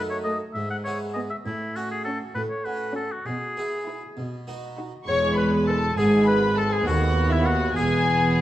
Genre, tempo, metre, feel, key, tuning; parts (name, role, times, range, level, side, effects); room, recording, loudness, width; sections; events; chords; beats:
classical, baroque-style concerto movement with solo episodes; 67 BPM (dotted quarters); 6/8; straight; E major; A4 = 440 Hz
harpsichord; accompaniment; 0.0-8.4 s; D#2 to A4; -30 LUFS; right 1 dB
dark chamber cello section; bass; 0.0-8.4 s; D#2 to B2; -26 LUFS; right 2 dB
warm oboe; melody; 0.1-8.4 s; E4 to F#5; -28 LUFS; left 2 dB
warm studio violin section; melody; 0.2-8.4 s; E5 to E6; -29 LUFS; left 3 dB
warm chamber violin section; second line; 0.3-8.4 s; E4 to C#5; -29 LUFS; left 3 dB
warm chamber viola section; accompaniment; 0.3-8.4 s; G#3 to E4; -28 LUFS; equal
dark chamber double bass section; bass; 5.1-8.4 s; E1 to D#2; -28 LUFS; right 2 dB
wet recital hall reverb, RT60 1.4 s; worn, warbling old tape, cassette tape, warbly pitch drift; -21 LUFS; side -13 dB against mid
0.0-5.1 A section; 5.1-8.4 B section
0.0 D#dim/F#; 0.6 E/G#; 1.5 F#m/A; 3.3 E/B; 4.2 B; 5.1 E; 6.9 B7/D#; 7.8 E
0.55 | 1.45 2.35 | 3.26 4.17 | 5.08 5.98 | 6.88 7.77